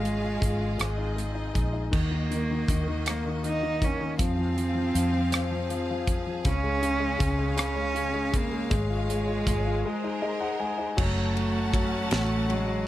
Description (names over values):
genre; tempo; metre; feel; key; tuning
six-eight pop ballad; 53 BPM (dotted quarters); 6/8; straight; Db major; A4 = 441 Hz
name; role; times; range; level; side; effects
warm cello; melody; 0.0-12.9 s; Ab3 to Eb4; -30 LUFS; right 3 dB; none
warm concert grand piano; accompaniment; 0.0-12.9 s; Db3 to Ab5; -31 LUFS; left 4 dB; none
clear studio string section; sustained chords; 0.0-12.9 s; Db3 to A5; -36 LUFS; equal; none
vintage muted fingered electric bass; bass; 0.0-12.9 s; Gb1 to F2; -30 LUFS; equal; none
modern studio drum kit; drums; 0.1-12.7 s; crash cymbal, hi-hat, kick drum, ride cymbal, rim click, snare drum; -29 LUFS; equal; none
room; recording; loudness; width
small room ambience; none; -25 LUFS; side -14 dB against mid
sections
0.0-1.9 A section; 1.9-11.0 B section; 11.0-12.9 C section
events
break 9.8-11.0; grand piano fill 9.8-11.0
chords
0.0 Db/Ab; 0.8 Ab6; 1.9 Ebm; 4.2 Fm; 6.5 Db; 8.7 Db/Ab; 9.8 Abadd9; 11.0 Gbm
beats
0.79 | 1.93 3.06 | 4.19 5.32 | 6.45 7.58 | 8.72 9.85 | 10.98 12.11